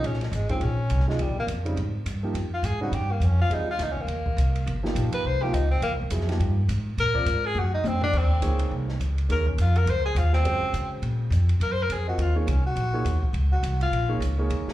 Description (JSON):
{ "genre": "modal jazz", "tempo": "208 BPM", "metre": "4/4", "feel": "swing 60% on 8ths", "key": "Bb dorian, Eb dorian from 8.1 s", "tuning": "A4 = 439 Hz", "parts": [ { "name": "warm tenor saxophone", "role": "melody", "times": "0.0-14.2 s", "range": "F3 to C5", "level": "-28 LUFS", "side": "left 1 dB", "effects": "plate reverb, slapback echo" }, { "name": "warm upright piano", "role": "accompaniment", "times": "0.0-14.7 s", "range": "Db3 to Eb5", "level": "-33 LUFS", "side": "right 2 dB", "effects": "plate reverb, slapback echo" }, { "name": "upright bass", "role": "bass", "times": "0.0-14.7 s", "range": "G1 to Db3", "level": "-24 LUFS", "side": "equal", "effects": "none" }, { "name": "open jazz drum kit", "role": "drums", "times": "0.0-14.7 s", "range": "crash cymbal, hi-hat, kick drum, ride cymbal, snare drum, toms", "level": "-35 LUFS", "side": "equal", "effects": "none" } ], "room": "light reverb", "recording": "live gig heard through the venue's PA, club reverb", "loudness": "-22 LUFS", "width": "side -14 dB against mid", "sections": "0.0-8.1 A section; 8.1-14.7 A section", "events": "tenor saxophone solo 0.0-14.7; drum fill 7.6-8.1", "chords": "0.0 Bbm9; 3.5 Cm; 7.0 Bb7(no3); 8.1 Ebm9" }